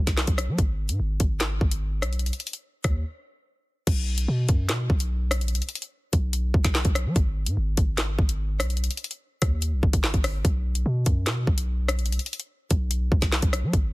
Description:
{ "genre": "hip hop, drill", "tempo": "146 BPM", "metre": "4/4", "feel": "half-time", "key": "unclear", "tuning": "A4 = 440 Hz", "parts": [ { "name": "long sustained 808-style bass", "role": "bass", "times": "0.0-13.9 s", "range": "G#1 to F#3", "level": "-26 LUFS", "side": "equal", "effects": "none" }, { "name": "drill drum kit", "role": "drums", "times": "0.1-13.8 s", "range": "crash cymbal, handclaps, hi-hat, kick drum, rim click, snare drum", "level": "-24 LUFS", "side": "equal", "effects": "none" } ], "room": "little or no reverb", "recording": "dense, heavily limited modern master", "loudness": "-22 LUFS", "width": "side -20 dB against mid", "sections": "0.0-3.9 A section; 3.9-13.9 B section", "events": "break 3.0-3.9", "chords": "none" }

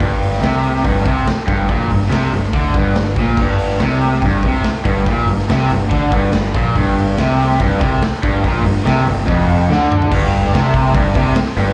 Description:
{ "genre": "garage rock duo or trio", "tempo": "143 BPM", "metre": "4/4", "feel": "straight", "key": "unclear", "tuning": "A4 = 440 Hz", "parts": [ { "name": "raw garage guitar", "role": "riff", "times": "0.0-11.7 s", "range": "F2 to D3", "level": "-19 LUFS", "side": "equal", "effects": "overdrive, slapback echo" }, { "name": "fuzz picked electric bass", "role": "bass", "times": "0.0-11.7 s", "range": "F1 to D2", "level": "-21 LUFS", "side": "equal", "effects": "overdrive" }, { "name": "raw garage drum kit", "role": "drums", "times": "0.0-11.7 s", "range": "crash cymbal, hi-hat, kick drum, snare drum, toms", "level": "-21 LUFS", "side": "equal", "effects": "vintage 12-bit sampler grit" } ], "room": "light reverb, small room ambience", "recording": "live gig heard through the venue's PA, cassette tape, club reverb", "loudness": "-15 LUFS", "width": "mono", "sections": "0.0-10.1 A section; 10.1-11.7 B section", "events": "drum fill 9.7-10.1", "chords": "0.0 G5" }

